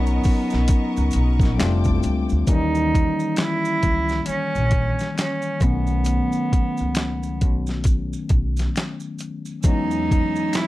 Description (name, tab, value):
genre	R&B, neo-soul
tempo	67 BPM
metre	4/4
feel	swing 60% on 16ths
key	B major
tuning	A4 = 440 Hz
part	warm cello	melody	0.0-10.7 s	B3 to E4	-24 LUFS	right 3 dB	none
part	overdriven tine electric piano	accompaniment	0.0-10.7 s	D#3 to A#4	-26 LUFS	left 4 dB	none
part	clear symphonic string section	sustained chords	0.0-2.5, 9.6-10.7 s	A4 to E6	-35 LUFS	equal	none
part	upright bass	bass	0.0-10.2 s	E1 to E2	-23 LUFS	equal	none
part	maracas and finger snaps	percussion	0.1-10.7 s	none	-40 LUFS	right 1 dB	none
part	boom bap sampler-style drum kit	drums	0.2-10.7 s	handclaps, hi-hat, kick drum, snare drum	-20 LUFS	equal	none
room	little or no reverb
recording	dark, warm production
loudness	-18 LUFS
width	side -16 dB against mid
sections	0.0-2.5 A section; 2.5-10.7 B section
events	none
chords	0.0 Bmaj9; 1.6 F69; 2.5 D#7b9; 5.6 B7; 9.6 E6